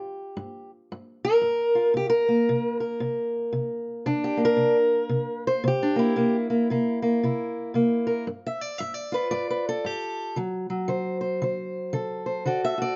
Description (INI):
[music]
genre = acoustic country blues, solo or duo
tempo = 114 BPM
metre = 4/4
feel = swing 61% on 8ths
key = unclear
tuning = A4 = 441 Hz
[part]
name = fingerpicked steel-string acoustic guitar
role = solo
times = 0.0-13.0 s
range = G2 to E5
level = -26 LUFS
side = equal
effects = none
[sound]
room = light reverb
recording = nothing above 7.6 kHz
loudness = -25 LUFS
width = mono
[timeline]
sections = 0.0-13.0 A section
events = none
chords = 0.0 N.C.; 2.0 C7; 8.3 G5; 10.4 D7